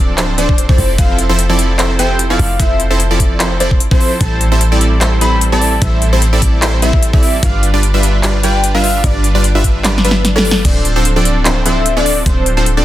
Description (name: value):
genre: future bass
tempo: 149 BPM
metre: 4/4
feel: swing 54% on 16ths, half-time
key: A minor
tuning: A4 = 440 Hz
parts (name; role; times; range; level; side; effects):
- supersaw stab; riff; 0.0-12.8 s; F3 to E5; -16 LUFS; right 1 dB; sidechain pumping
- warm 808-style bass; bass; 0.0-12.8 s; D1 to A1; -15 LUFS; equal; sidechain pumping
- big-room dance drum kit; drums; 0.2-12.8 s; crash cymbal, handclaps, hi-hat, snare drum; -17 LUFS; left 1 dB; overdrive
- soft octave-layered synth lead; melody; 0.4-12.5 s; A4 to B5; -19 LUFS; left 1 dB; chorus, phaser, sidechain pumping, digital delay
- electronic kick drum; drums; 0.5-12.3 s; none; -13 LUFS; equal; none
- swell; sound effects; 10.0-10.6 s; none; -30 LUFS; equal; none
room: little or no reverb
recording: dense, heavily limited modern master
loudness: -10 LUFS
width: side -14 dB against mid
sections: 0.0-12.8 A section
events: kick drops out 9.8-10.6; drum fill 9.8-10.6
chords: 0.0 Dm7; 0.8 Fmaj7; 4.2 Am7; 7.4 G7; 10.6 Dm7